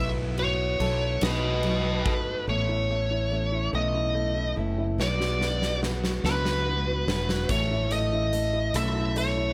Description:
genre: six-eight pop ballad.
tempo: 48 BPM (dotted quarters).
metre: 6/8.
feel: straight.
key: unclear.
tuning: A4 = 440 Hz.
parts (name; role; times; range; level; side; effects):
bluesy overdriven lead guitar; melody; 0.0-9.5 s; B4 to E5; -31 LUFS; equal; distortion, delay.
clear baby grand piano; accompaniment; 0.0-9.5 s; A3 to A4; -35 LUFS; equal; plate reverb.
picked steel-string acoustic guitar; arpeggios; 0.0-9.5 s; A2 to A4; -38 LUFS; equal; plate reverb.
mellow fretless electric bass; bass; 0.0-9.5 s; E1 to C#2; -31 LUFS; equal; none.
huge arena drum kit; drums; 0.4-9.4 s; hi-hat, kick drum, ride cymbal, rim click, snare drum; -34 LUFS; equal; none.
room: light reverb.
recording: none.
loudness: -26 LUFS.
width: mono.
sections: 0.0-2.5 A section; 2.5-9.5 B section.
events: drum fill 5.0-7.5.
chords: 0.0 B7sus4; 1.2 B7; 2.5 Aadd9; 5.0 Bm; 7.5 A.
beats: 1.22 | 2.48 3.73 | 4.99 6.24 | 7.50 8.75.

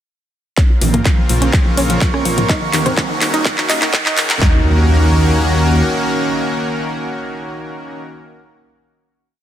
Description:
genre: progressive house.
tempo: 125 BPM.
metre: 4/4.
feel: straight.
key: Eb dorian.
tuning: A4 = 442 Hz.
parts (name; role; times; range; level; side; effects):
supersaw pad; sustained chords; 0.6-8.0 s; Db3 to Bb4; -19 LUFS; equal; sidechain pumping.
analog pluck; arpeggios; 0.6-8.0 s; Eb3 to Eb4; -21 LUFS; equal; chorus, sidechain pumping, tape echo.
big-room dance drum kit; drums; 0.6-4.5 s; handclaps, kick drum, snare drum; -14 LUFS; equal; studio reverb.
big-room dance drum kit; drums; 0.6-4.4 s; handclaps, hi-hat, rim click; -19 LUFS; equal; studio reverb.
riser and impact; sound effects; 1.6-8.1 s; none; -25 LUFS; right 1 dB; none.
drifting glass-harmonics texture; texture; 1.3-4.4 s; Db6; -28 LUFS; right 10 dB; chorus, built-in reverb, sidechain pumping.
dark detuned saw bass; bass; 0.8-5.8 s; Eb1 to Eb2; -16 LUFS; equal; tube saturation, sidechain pumping.
electronic congas and toms; percussion; 0.8-3.0 s; none; -21 LUFS; right 3 dB; sidechain pumping on perc, studio reverb, sidechain pumping on toms.
room: light reverb.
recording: dense, heavily limited modern master, high-pass filter.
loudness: -12 LUFS.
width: side -11 dB against mid.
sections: 0.6-4.4 build; 4.4-8.3 final chord.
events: build-up 0.6-4.4; drum fill 0.6-4.4; filter sweep on synth pluck 0.6-4.4; filter sweep 0.6-4.4; riser 1.6-4.4.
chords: 0.6 Bbmadd9; 2.5 Ebm7.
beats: | 0.57 1.05 1.53 2.02 | 2.50 2.98 3.46 3.94 | 4.42 4.89 5.38 5.86 | 6.33 6.82 7.29 7.78.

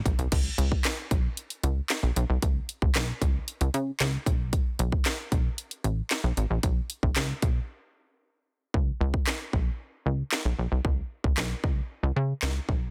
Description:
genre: dance-pop.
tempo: 114 BPM.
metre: 4/4.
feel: straight.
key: unclear.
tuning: A4 = 435 Hz.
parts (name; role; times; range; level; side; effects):
plucky analog bass; bass; 0.1-12.9 s; A1 to C#3; -30 LUFS; equal; sidechain pumping.
house drum kit; drums; 0.1-12.8 s; crash cymbal, handclaps, hi-hat, kick drum, snare drum; -29 LUFS; equal; none.
room: little or no reverb.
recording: dense, heavily limited modern master.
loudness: -28 LUFS.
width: mono.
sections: 0.3-8.7 A section; 8.7-12.9 B section.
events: break 7.7-8.7.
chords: none.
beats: | 0.32 0.85 1.37 1.90 | 2.42 2.95 3.48 4.00 | 4.53 5.06 5.58 6.11 | 6.64 7.16 7.69 8.21 | 8.74 9.27 9.79 10.32 | 10.85 11.37 11.90 12.43.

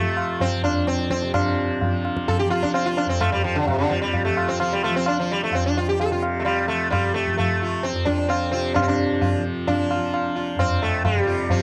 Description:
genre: indian classical, Hindustani.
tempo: 130 BPM.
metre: 4/4.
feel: straight.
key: F raga bhupali.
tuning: A4 = 440 Hz.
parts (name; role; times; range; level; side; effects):
sitar; melody; 0.0-11.6 s; C3 to A4; -25 LUFS; equal; cassette tape.
tanpura; drone; 0.0-11.6 s; F2 to F3; -29 LUFS; equal; cassette tape.
tabla; percussion; 0.2-11.6 s; none; -27 LUFS; equal; none.
room: light reverb.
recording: home recording on cassette.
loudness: -22 LUFS.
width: mono.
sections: 0.0-8.8 A section; 8.8-11.6 B section.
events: speeding up 0.0-11.6.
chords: none.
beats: 0.41 0.88 | 1.34 1.81 2.28 2.74 | 3.21 3.67 4.14 4.60 | 5.07 5.53 5.99 6.45 | 6.92 7.38 7.84 8.30 | 8.76 9.21 9.67 10.13 | 10.58 11.04 11.49.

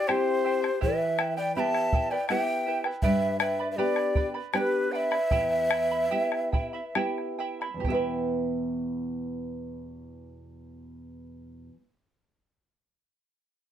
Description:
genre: andean folk, Andean ensemble.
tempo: 65-81 BPM.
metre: 3/4.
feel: straight.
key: E minor pentatonic.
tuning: A4 = 440 Hz.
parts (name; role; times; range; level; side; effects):
breathy large quena; melody; 0.0-7.0 s; B4 to B5; -28 LUFS; equal; slapback echo.
mellow hollow polished pan flute; second line; 0.0-6.9 s; G4 to E5; -31 LUFS; left 2 dB; none.
charango; accompaniment; 0.0-11.9 s; E4 to B5; -34 LUFS; right 4 dB; none.
nylon-string guitar; accompaniment; 0.1-11.9 s; E2 to B4; -32 LUFS; right 2 dB; none.
bombo; percussion; 0.1-8.3 s; none; -29 LUFS; equal; none.
room: light reverb.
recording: none.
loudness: -25 LUFS.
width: side -10 dB against mid.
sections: 0.0-7.8 A section; 7.8-10.6 B section.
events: slowing down 3.0-7.8.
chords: 0.0 C; 0.8 Em; 3.0 G; 5.3 Em.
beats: 0.09 | 0.82 1.56 2.30 | 3.04 3.78 4.53 | 5.30 6.11 6.95 | 7.84 8.75 9.67.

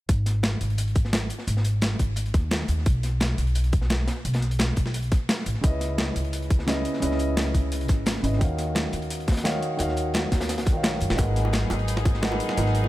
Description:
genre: liquid drum and bass.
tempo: 173 BPM.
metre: 4/4.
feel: straight.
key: G# minor.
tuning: A4 = 440 Hz.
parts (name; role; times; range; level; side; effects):
upright bass; bass; 0.1-12.9 s; G#1 to F#2; -26 LUFS; equal; tube saturation.
breakbeat sampler-style drum kit; drums; 0.1-12.8 s; hi-hat, snare drum; -29 LUFS; equal; overdrive.
crunchy breakbeat drum kit; drums; 0.1-12.8 s; hi-hat, snare drum; -35 LUFS; equal; high-pass filter on hats, high-pass filter on snare, high-pass filter on room.
electronic kick drum; drums; 0.1-12.1 s; none; -22 LUFS; equal; none.
dark grand piano; accompaniment; 5.6-12.9 s; C#3 to F#5; -28 LUFS; right 1 dB; tape echo.
rich studio string section; sustained chords; 11.2-12.9 s; F#3 to G#4; -32 LUFS; left 1 dB; sidechain pumping.
bongos; percussion; 11.2-12.9 s; none; -34 LUFS; right 2 dB; none.
room: small room ambience.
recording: none.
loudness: -22 LUFS.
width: side -16 dB against mid.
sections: 0.1-12.9 A section.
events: drum fill 10.8-11.2.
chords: 0.1 G#5; 2.9 N.C.; 5.6 C#m7; 8.4 D#m7; 11.2 G#m7.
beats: | 0.09 0.43 0.78 1.13 | 1.48 1.82 2.17 2.52 | 2.86 3.21 3.56 3.90 | 4.25 4.60 4.94 5.29 | 5.64 5.98 6.33 6.68 | 7.03 7.37 7.72 8.06 | 8.41 8.76 9.11 9.45 | 9.80 10.15 10.49 10.84 | 11.19 11.53 11.88 12.23 | 12.57.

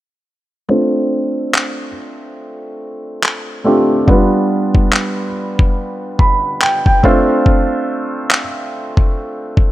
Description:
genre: contemporary R&B.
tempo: 71 BPM.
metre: 4/4.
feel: swing 58% on 16ths.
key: D dorian.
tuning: A4 = 441 Hz.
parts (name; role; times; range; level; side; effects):
felt-muted upright piano; accompaniment; 0.7-9.7 s; G3 to B5; -16 LUFS; right 1 dB; low-pass filter.
dusty soul sampler-style drum kit; drums; 1.5-9.7 s; handclaps, kick drum; -14 LUFS; equal; none.
room: light reverb.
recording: none.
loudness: -13 LUFS.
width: side -15 dB against mid.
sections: 0.7-9.7 A section.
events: filter sweep on felt piano 0.7-9.7; felt piano fill 5.8-7.5.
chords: 0.7 Dm7; 4.1 G7; 7.0 Dm7.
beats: | 0.70 1.54 2.39 3.23 | 4.08 4.92 5.77 6.62 | 7.46 8.30 9.15.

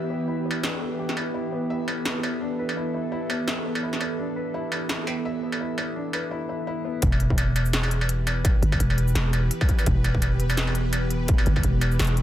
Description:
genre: half-time drum and bass.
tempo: 169 BPM.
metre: 4/4.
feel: swing 56% on 16ths, half-time.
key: E minor.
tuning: A4 = 438 Hz.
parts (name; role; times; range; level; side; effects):
bowed-like drone; sustained chords; 0.0-12.2 s; E3 to B4; -30 LUFS; right 1 dB; built-in reverb, sidechain pumping.
felt-muted upright piano; arpeggios; 0.0-7.0 s; B3 to E5; -31 LUFS; left 1 dB; dub echo.
industrial drum kit; drums; 0.5-12.2 s; hi-hat, shaker, snare drum, struck metal; -28 LUFS; equal; overdrive.
growling 808-style bass; bass; 7.0-12.2 s; E1 to G1; -23 LUFS; equal; tube saturation.
electronic kick drum; drums; 7.0-11.6 s; none; -22 LUFS; equal; distortion, overdrive.
room: light reverb.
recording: dense, heavily limited modern master.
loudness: -22 LUFS.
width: side -12 dB against mid.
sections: 0.0-7.0 A section; 7.0-12.2 B section.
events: drop 7.0-12.2.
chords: 0.0 Em.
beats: 0.28 0.64 0.99 | 1.35 1.70 2.06 2.41 | 2.77 3.12 3.48 3.83 | 4.19 4.54 4.90 5.25 | 5.61 5.96 6.32 6.67 | 7.03 7.38 7.74 8.09 | 8.45 8.80 9.16 9.51 | 9.87 10.22 10.58 10.93 | 11.29 11.64 12.00.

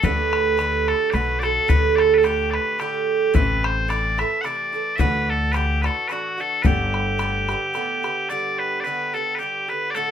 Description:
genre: celtic folk, Celtic waltz.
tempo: 109 BPM.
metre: 3/4.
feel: swing 53% on 8ths.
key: G major.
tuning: A4 = 438 Hz.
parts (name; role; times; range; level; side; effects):
loud bright bagpipes; melody; 0.0-10.1 s; F#4 to F#5; -23 LUFS; left 2 dB; none.
Irish bouzouki; accompaniment; 0.0-10.1 s; G2 to G4; -24 LUFS; right 7 dB; none.
upright bass; bass; 0.0-7.5 s; G1 to D2; -24 LUFS; left 1 dB; none.
bodhran; percussion; 0.0-8.2 s; none; -24 LUFS; left 3 dB; none.
room: moderate studio reverb, RT60 0.5 s.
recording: minimal, uncompressed stereo recording.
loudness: -19 LUFS.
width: side -9 dB against mid.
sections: 0.0-8.3 A section; 8.3-10.1 B section.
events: none.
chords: 0.0 Dsus4; 1.1 Bm7; 1.7 Dsus4; 3.3 Am; 5.0 Dadd9; 6.6 Gadd9; 8.3 G.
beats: | 0.03 0.59 1.14 | 1.69 2.24 2.79 | 3.34 3.89 4.45 | 5.00 5.55 6.10 | 6.65 7.20 7.75 | 8.30 8.85 9.40 | 9.95.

